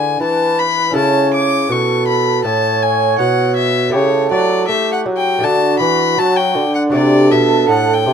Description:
classical, baroque-style sonata movement with continuo; 80 BPM; 4/4; straight; A major, D major from 3.9 s; A4 = 441 Hz
warm violin; melody; 0.0-8.1 s; C#5 to D6; -17 LUFS; left 6 dB
lute; accompaniment; 0.0-8.1 s; A2 to A4; -19 LUFS; equal
mellow bassoon; bass; 0.0-8.1 s; A2 to A3; -18 LUFS; right 1 dB
mellow baroque flute; second line; 0.2-8.1 s; F#4 to C#5; -19 LUFS; right 7 dB
little or no reverb; close, detailed microphones; -12 LUFS; side -7 dB against mid
0.0-8.1 A section
0.0 E7/D; 1.0 A; 3.9 A7/C#; 5.4 D; 6.9 D7
0.21 | 0.96 1.70 2.45 3.19 | 3.94 4.68 5.43 6.18 | 6.94 7.69

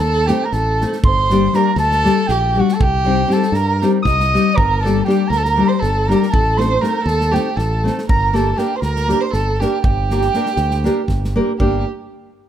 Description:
balkan folk, Balkan wedding band; 239 BPM (eighths); 7/8; straight; G minor; A4 = 440 Hz
dark clarinet; melody; 0.0-11.8 s; F#5 to Eb6; -20 LUFS; right 1 dB
dark violin; second line; 0.0-11.8 s; F#4 to Eb5; -23 LUFS; right 4 dB
modern bright fingered electric bass; bass; 0.0-11.8 s; G1 to G2; -19 LUFS; right 1 dB
nylon-string guitar; accompaniment; 0.3-11.8 s; G3 to Bb4; -18 LUFS; left 3 dB
natural country drum kit; percussion; 0.3-11.8 s; kick drum, snare drum; -22 LUFS; right 1 dB
light reverb; close, detailed microphones; -14 LUFS; side -10 dB against mid
0.0-11.6 A section
0.0 Adim; 1.0 Gm; 2.8 Cm; 4.6 Gm; 6.3 Adim; 8.1 Gm
0.03 0.28 0.53 0.79 | 1.04 1.29 1.54 1.80 2.05 2.30 2.56 | 2.81 3.06 3.31 3.56 3.82 4.07 4.32 | 4.57 4.82 5.08 5.33 5.58 5.83 6.08 | 6.33 6.58 6.83 7.09 7.34 7.59 7.84 | 8.09 8.34 8.59 8.84 9.09 9.34 9.59 | 9.84 10.09 10.34 10.59 10.84 11.09 11.34 | 11.59

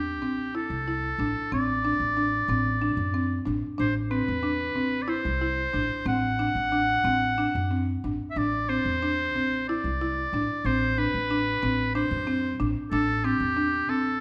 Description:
contemporary instrumental, chamber music in an uneven meter; 185 BPM (eighths); 7/8; straight; A dorian; A4 = 441 Hz
clear oboe; melody; 0.0-14.2 s; G4 to F#5; -30 LUFS; equal
buzzing marimba with medium mallets; arpeggios; 0.0-14.1 s; C4 to E4; -31 LUFS; equal
upright bass; bass; 0.0-14.2 s; A1 to F#2; -34 LUFS; equal
wet recital hall reverb, RT60 1.3 s; -26 LUFS; mono
0.0-14.2 A section
0.0 Am; 1.5 D7/A; 3.8 Am; 6.1 D7/A; 8.4 Am; 10.7 D7/A; 12.9 Am
0.23 0.55 0.88 1.20 | 1.53 1.85 2.17 2.50 2.82 3.14 3.47 | 3.79 4.12 4.44 4.76 5.09 5.41 5.74 | 6.06 6.39 6.72 7.05 7.38 7.71 8.04 | 8.37 8.70 9.03 9.36 9.69 10.01 10.34 | 10.66 10.99 11.31 11.63 11.95 12.28 12.60 | 12.92 13.25 13.57 13.89

